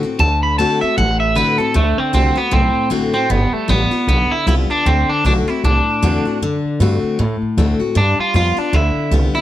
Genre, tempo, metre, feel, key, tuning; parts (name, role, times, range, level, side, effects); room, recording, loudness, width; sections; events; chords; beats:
rockabilly; 155 BPM; 4/4; swing 59% on 8ths; D mixolydian; A4 = 440 Hz
picked steel-string acoustic guitar; accompaniment; 0.0-9.4 s; A2 to F#4; -20 LUFS; left 4 dB
upright bass; bass; 0.0-9.4 s; G1 to A2; -17 LUFS; right 1 dB
electric guitar at the edge of break-up; melody; 0.2-9.4 s; A3 to B5; -17 LUFS; right 1 dB; tape echo
light reverb, small room ambience; -14 LUFS; side -13 dB against mid
0.0-1.8 A section; 1.8-9.4 B section
clean electric guitar solo 0.0-1.8
0.0 D7; 3.3 G7; 4.9 D7; 8.0 G7
| 0.20 0.59 0.97 1.36 | 1.75 2.14 2.53 2.92 | 3.30 3.69 4.08 4.47 | 4.86 5.25 5.63 6.02 | 6.41 6.80 7.19 7.57 | 7.96 8.35 8.74 9.12